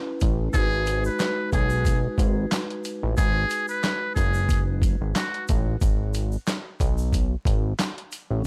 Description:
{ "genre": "hip hop, boom-bap hip-hop", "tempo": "91 BPM", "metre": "4/4", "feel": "swing 55% on 16ths", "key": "G# minor", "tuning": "A4 = 442 Hz", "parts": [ { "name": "vibraphone with soft mallets", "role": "accompaniment", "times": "0.0-8.5 s", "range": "G#3 to B4", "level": "-34 LUFS", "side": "equal", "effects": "cassette tape, high-pass filter, low-pass filter" }, { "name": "fat analog bass", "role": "bass", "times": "0.2-8.4 s", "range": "F#1 to B1", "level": "-27 LUFS", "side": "equal", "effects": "none" }, { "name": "boom bap sampler-style drum kit", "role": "drums", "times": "0.2-8.3 s", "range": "handclaps, hi-hat, kick drum, snare drum", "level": "-26 LUFS", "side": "equal", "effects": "none" }, { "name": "egg shaker", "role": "percussion", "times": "0.2-8.3 s", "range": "none", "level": "-47 LUFS", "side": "equal", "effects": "none" }, { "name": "trumpet with metal mute", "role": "melody", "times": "0.5-5.4 s", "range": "F#4 to B4", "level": "-31 LUFS", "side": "equal", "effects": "high-pass filter, low-pass filter, analog delay" } ], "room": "studio reverb", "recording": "dry, gritty hardware recording, transformer saturation, vinyl crackle", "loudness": "-24 LUFS", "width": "mono", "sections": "0.0-8.5 A section", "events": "none", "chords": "0.0 C#m7; 0.5 G#m7; 5.8 C#7(no3)/G# (rootless)" }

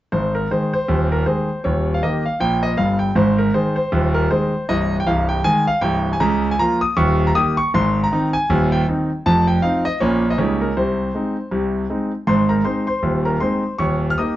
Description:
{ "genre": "jazz, stride piano", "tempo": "158 BPM", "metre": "4/4", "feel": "swing 60% on 8ths", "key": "Ab major", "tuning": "A4 = 439 Hz", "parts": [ { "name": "clear concert grand piano", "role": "solo", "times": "0.1-14.4 s", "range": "C1 to F6", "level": "-16 LUFS", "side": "equal", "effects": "none" } ], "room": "moderate club reverb, RT60 0.8 s", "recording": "dark, warm production, nothing above 7.6 kHz", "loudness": "-16 LUFS", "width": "side -14 dB against mid", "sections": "0.1-12.3 A section; 12.3-14.4 A section", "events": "none", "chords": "0.1 Ab; 1.6 Eb; 3.2 Ab; 4.7 Ab/C; 6.2 Bbm/Db; 7.0 Eb; 7.7 Ab; 9.2 F5; 10.0 Bbm; 10.4 Eb7/Db; 10.8 Ab/C; 12.3 Ab; 13.8 Eb7" }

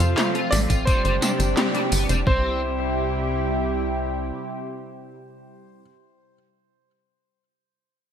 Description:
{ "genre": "synthwave", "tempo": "86 BPM", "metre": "4/4", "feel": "straight", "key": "C major", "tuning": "A4 = 438 Hz", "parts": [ { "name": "clear electric grand piano", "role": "melody", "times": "0.0-5.8 s", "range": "C5 to D5", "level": "-29 LUFS", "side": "equal", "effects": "ping-pong delay" }, { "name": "lush unison pad", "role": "sustained chords", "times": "0.0-5.8 s", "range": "C3 to G4", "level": "-26 LUFS", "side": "right 1 dB", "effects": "chorus, sidechain pumping" }, { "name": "analog pluck", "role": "arpeggios", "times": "0.0-2.6 s", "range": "A3 to D5", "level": "-31 LUFS", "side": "left 2 dB", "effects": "chorus, phaser, ping-pong delay" }, { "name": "cranked stack guitar", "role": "riff", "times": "0.0-2.6 s", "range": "G3 to F5", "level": "-32 LUFS", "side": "left 3 dB", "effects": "overdrive, ensemble chorus, ping-pong delay" }, { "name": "tight sequencer bass", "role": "bass", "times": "0.0-4.3 s", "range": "F1 to F2", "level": "-25 LUFS", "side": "equal", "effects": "none" }, { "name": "80s electronic pad drums", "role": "drums", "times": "0.0-2.2 s", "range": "handclaps, hi-hat, snare drum, tambourine", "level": "-25 LUFS", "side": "equal", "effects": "none" }, { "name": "electronic kick drum", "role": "drums", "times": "0.7-2.4 s", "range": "none", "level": "-22 LUFS", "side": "equal", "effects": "none" } ], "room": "light reverb", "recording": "none", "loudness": "-20 LUFS", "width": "side -8 dB against mid", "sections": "0.0-2.3 A section; 2.3-5.1 B section", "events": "band accent 1.6-1.9", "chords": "0.0 F; 0.9 Gsus4; 2.3 C" }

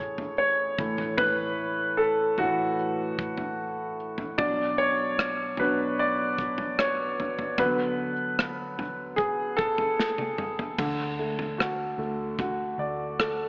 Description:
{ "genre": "pop ballad", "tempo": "75 BPM", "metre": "4/4", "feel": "straight", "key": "unclear", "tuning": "A4 = 440 Hz", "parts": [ { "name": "warm concert grand piano", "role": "accompaniment", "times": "0.0-13.5 s", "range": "A2 to D5", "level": "-25 LUFS", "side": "equal", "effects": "wide subtle chorus" }, { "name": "modern studio drum kit", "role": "drums", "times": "0.2-13.4 s", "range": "crash cymbal, kick drum, rim click, snare drum, toms", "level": "-31 LUFS", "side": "equal", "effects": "none" }, { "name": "vintage muted fingered electric bass", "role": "bass", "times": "10.8-13.5 s", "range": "D2", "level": "-40 LUFS", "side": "equal", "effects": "none" } ], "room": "wet plate reverb, RT60 2.8 s", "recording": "dreamy mix soaked in reverb, AM radio sound", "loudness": "-25 LUFS", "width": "side -32 dB against mid", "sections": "0.0-10.8 A section; 10.8-13.5 B section", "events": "grand piano solo 0.0-10.8; drum fill 10.0-10.8", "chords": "0.0 A; 0.8 F#m7/A; 4.4 Bmadd9; 7.6 D6; 10.8 D" }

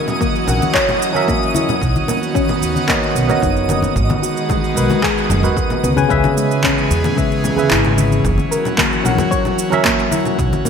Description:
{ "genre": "sunset chillout", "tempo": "112 BPM", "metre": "4/4", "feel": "straight", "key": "unclear", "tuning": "A4 = 440 Hz", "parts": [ { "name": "airy breathy pad", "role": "sustained chords", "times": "0.0-10.7 s", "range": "D#3 to G#4", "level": "-22 LUFS", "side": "right 1 dB", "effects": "chorus" }, { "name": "soft round pluck", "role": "arpeggios", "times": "0.0-10.7 s", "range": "G#3 to C#5", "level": "-23 LUFS", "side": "left 3 dB", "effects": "wide subtle chorus, digital delay" }, { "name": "twinkling granular texture", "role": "texture", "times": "0.0-6.1 s", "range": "D#5 to D#6", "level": "-25 LUFS", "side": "equal", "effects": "built-in reverb, analog chorus" }, { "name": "electronic congas, shaker and handclaps", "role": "drums", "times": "0.1-10.7 s", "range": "none", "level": "-21 LUFS", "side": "equal", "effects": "gated reverb" }, { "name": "electronic kick drum", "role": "drums", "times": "0.2-10.5 s", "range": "none", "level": "-23 LUFS", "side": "right 1 dB", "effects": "none" }, { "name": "congas", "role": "percussion", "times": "0.2-10.6 s", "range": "none", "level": "-26 LUFS", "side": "left 2 dB", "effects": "none" }, { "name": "tine electric piano", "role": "accompaniment", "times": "0.5-10.4 s", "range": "C#3 to G#5", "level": "-19 LUFS", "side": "moving between left 5 dB and right 5 dB", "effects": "auto-pan, digital delay" }, { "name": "upright bass", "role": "bass", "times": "0.5-10.5 s", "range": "F#1 to E2", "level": "-20 LUFS", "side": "equal", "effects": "tube saturation" } ], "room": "moderate plate reverb, RT60 2.5 s", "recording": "bright 1980s-style digital production", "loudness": "-14 LUFS", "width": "side -7 dB against mid", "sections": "0.0-6.1 A section; 6.1-10.7 B section", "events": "none", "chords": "0.0 F#7; 1.8 Bmaj9; 4.0 G#m9; 6.1 C#m7; 8.2 F#7" }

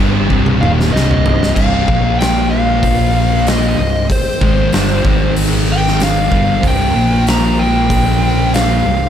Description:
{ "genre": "stoner and doom metal", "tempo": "95 BPM", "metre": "4/4", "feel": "straight", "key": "unclear", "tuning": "A4 = 440 Hz", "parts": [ { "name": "string machine, violins", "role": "sustained chords", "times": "0.0-9.1 s", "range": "Ab3 to C5", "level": "-28 LUFS", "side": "equal", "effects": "none" }, { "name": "thick fuzz guitar", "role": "riff", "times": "0.0-9.1 s", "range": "C2 to Bb3", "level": "-18 LUFS", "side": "left 8 dB", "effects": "distortion" }, { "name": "thick fuzz guitar", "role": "riff", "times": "0.0-9.1 s", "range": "C2 to Bb3", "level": "-19 LUFS", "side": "right 9 dB", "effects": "distortion" }, { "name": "fingered electric bass", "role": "bass", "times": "0.0-9.1 s", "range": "C1 to Bb1", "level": "-18 LUFS", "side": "equal", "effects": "overdrive" }, { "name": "oversized low-tuned drum kit", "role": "drums", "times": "0.0-8.7 s", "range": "crash cymbal, hi-hat, kick drum, snare drum, toms", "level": "-17 LUFS", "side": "equal", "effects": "none" }, { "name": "fuzz lead guitar", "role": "melody", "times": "0.6-9.1 s", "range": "C5 to Bb5", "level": "-18 LUFS", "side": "equal", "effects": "distortion, analog delay" } ], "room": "light reverb", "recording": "none", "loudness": "-11 LUFS", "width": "side -9 dB against mid", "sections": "0.0-1.6 A section; 1.6-9.1 B section", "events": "drum fill 0.3-1.6", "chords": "0.0 Cm; 1.6 C5; 1.9 Bb5; 3.8 Cm; 5.0 Ab5; 6.3 C5; 7.0 Bb5" }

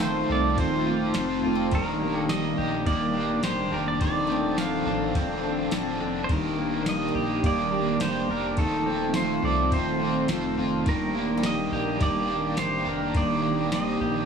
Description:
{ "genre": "dream pop", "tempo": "105 BPM", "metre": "4/4", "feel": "straight", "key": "Eb lydian", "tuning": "A4 = 440 Hz", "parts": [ { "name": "pedal steel guitar", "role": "melody", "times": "0.0-14.3 s", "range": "A4 to F5", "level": "-30 LUFS", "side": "right 2 dB", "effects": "tape echo" }, { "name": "overdriven semi-hollow guitar", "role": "accompaniment", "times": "0.0-14.3 s", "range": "Eb3 to A4", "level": "-30 LUFS", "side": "right 2 dB", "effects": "harmonic tremolo, wide subtle chorus" }, { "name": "phased analog pad", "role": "sustained chords", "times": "0.0-14.3 s", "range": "Eb3 to A4", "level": "-29 LUFS", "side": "right 1 dB", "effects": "phaser, chorus" }, { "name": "electric guitar at the edge of break-up", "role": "arpeggios", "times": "0.0-14.3 s", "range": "Eb3 to A4", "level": "-30 LUFS", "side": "left 3 dB", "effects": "wide subtle chorus, tape echo" }, { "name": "warm sub bass", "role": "bass", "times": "0.0-14.3 s", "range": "D1 to C2", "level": "-36 LUFS", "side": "equal", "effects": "none" }, { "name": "soft vintage rhythm box", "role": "drums", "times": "0.0-13.9 s", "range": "kick drum, ride cymbal, snare drum, tambourine", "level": "-31 LUFS", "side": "equal", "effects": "tape echo" }, { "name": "koto", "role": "texture", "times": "0.0-14.3 s", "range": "G3 to C4", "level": "-41 LUFS", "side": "left 2 dB", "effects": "none" } ], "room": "moderate echo chamber reverb, RT60 2.3 s", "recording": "echo-heavy mix, small room ambience", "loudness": "-23 LUFS", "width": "side -6 dB against mid", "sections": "0.0-14.3 A section", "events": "none", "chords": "0.0 F7/Eb; 1.7 Ebmaj7; 4.0 Dm7/Eb; 6.3 Ebmaj7; 8.6 F7/Eb; 10.9 Ebmaj7" }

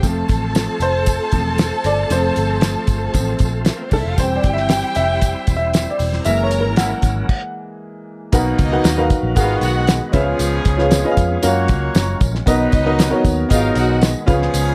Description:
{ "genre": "uptempo 1960s-style soul", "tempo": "116 BPM", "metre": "4/4", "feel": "straight", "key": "unclear", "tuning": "A4 = 441 Hz", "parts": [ { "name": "warm studio violin section", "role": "second line", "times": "0.0-14.0 s", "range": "A3 to Bb5", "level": "-27 LUFS", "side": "equal", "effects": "none" }, { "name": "clear upright piano", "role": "accompaniment", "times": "0.0-14.7 s", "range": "G#2 to G5", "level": "-22 LUFS", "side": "equal", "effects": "none" }, { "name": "bright tonewheel organ", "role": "sustained chords", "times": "0.0-14.7 s", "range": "B2 to C5", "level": "-32 LUFS", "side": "equal", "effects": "slow rotary speaker" }, { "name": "vintage muted picked electric bass", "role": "bass", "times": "0.0-14.7 s", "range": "E1 to F#2", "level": "-23 LUFS", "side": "equal", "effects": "none" }, { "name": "cloth-damped thuddy drum kit", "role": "drums", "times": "0.0-14.7 s", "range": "crash cymbal, hi-hat, kick drum, snare drum", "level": "-19 LUFS", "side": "equal", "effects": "none" }, { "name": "tambourine", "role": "percussion", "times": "0.0-14.7 s", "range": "none", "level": "-36 LUFS", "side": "equal", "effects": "none" }, { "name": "clear horn section", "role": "second line", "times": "6.8-14.7 s", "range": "B2 to C#5", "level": "-28 LUFS", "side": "equal", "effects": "none" } ], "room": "light reverb, small room ambience", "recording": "none", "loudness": "-17 LUFS", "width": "mono", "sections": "0.0-8.3 A section; 8.3-14.7 B section", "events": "upright piano solo 0.0-8.3; band accent 6.3-8.3; stop 7.3-8.3", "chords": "0.0 C/E; 6.3 Gb7; 8.3 Bmaj7; 9.4 G#m7; 10.1 C#7; 11.4 F#maj7; 12.5 Bmaj7; 13.5 G#m7" }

